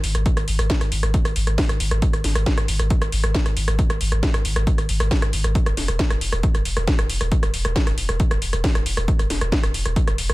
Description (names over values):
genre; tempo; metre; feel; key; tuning
driving peak-time techno; 136 BPM; 4/4; straight; unclear; A4 = 440 Hz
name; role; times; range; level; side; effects
saturated sub bass; bass; 0.0-10.3 s; E1 to G#1; -23 LUFS; equal; overdrive, sidechain pumping, low-pass filter
techno drum kit; drums; 0.0-10.3 s; hi-hat, rim click, snare drum; -24 LUFS; equal; sidechain pumping on hats, sidechain pumping on cymbals
electronic kick drum; drums; 0.3-10.1 s; none; -21 LUFS; equal; none
room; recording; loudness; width
little or no reverb; none; -18 LUFS; side -19 dB against mid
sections
0.0-10.3 A section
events
none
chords
none